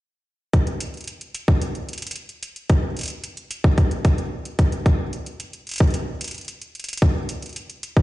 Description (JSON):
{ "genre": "IDM", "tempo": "111 BPM", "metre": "4/4", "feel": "straight", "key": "none", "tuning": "none", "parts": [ { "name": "electronic hi-hat", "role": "drums", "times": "0.5-8.0 s", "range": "none", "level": "-33 LUFS", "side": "right 1 dB", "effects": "none" }, { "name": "electronic kick drum", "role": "drums", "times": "0.5-8.0 s", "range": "none", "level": "-19 LUFS", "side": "equal", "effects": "none" } ], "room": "little or no reverb", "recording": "played on a big sound system in a bare room, stone room reverb, nothing above 10.7 kHz", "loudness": "-20 LUFS", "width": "side -17 dB against mid", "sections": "0.5-8.0 A section", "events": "none", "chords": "none" }